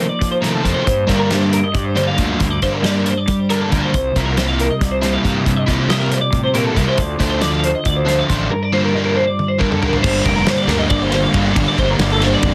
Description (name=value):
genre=math rock and midwest emo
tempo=275 BPM (eighths)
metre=7/8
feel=straight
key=G minor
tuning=A4 = 441 Hz
part: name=clean electric guitar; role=accompaniment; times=0.0-11.5 s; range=G2 to C5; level=-25 LUFS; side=equal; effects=none
part: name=twelve-string electric guitar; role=arpeggios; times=0.0-12.5 s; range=A4 to F5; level=-23 LUFS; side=equal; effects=analog chorus
part: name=crunchy overdriven guitar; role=riff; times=0.0-12.5 s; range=G2 to E4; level=-22 LUFS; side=equal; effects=none
part: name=fuzz fingered electric bass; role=bass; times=0.2-12.5 s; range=F1 to G3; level=-24 LUFS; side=equal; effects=overdrive
part: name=loose indie drum kit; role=drums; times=0.2-12.5 s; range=crash cymbal, hi-hat, kick drum, ride cymbal, snare drum, toms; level=-23 LUFS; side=equal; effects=none
room=light reverb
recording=dense, heavily limited modern master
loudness=-17 LUFS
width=mono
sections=0.0-10.0 A section; 10.0-12.5 B section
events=drum fill 9.4-10.0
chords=0.0 F7sus4; 0.9 Gm7; 3.9 C7sus4; 7.0 Dm7; 8.5 Gm7; 10.0 Gm11